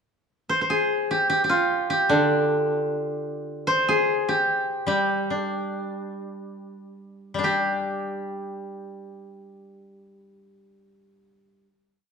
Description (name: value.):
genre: japanese traditional, Japanese chamber music.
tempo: 47-77 BPM.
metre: 2/4.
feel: rubato.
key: G in sen.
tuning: A4 = 442 Hz.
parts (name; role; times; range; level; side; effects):
koto; melody; 0.5-11.7 s; D4 to C5; -23 LUFS; equal; none.
koto; accompaniment; 2.1-11.7 s; D3 to G4; -28 LUFS; left 1 dB; none.
room: moderate recital hall reverb, RT60 1.5 s.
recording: dark, warm production.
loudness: -22 LUFS.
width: side -6 dB against mid.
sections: 0.5-7.5 A section; 7.5-12.1 final chord.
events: slowing down 3.7-7.5.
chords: none.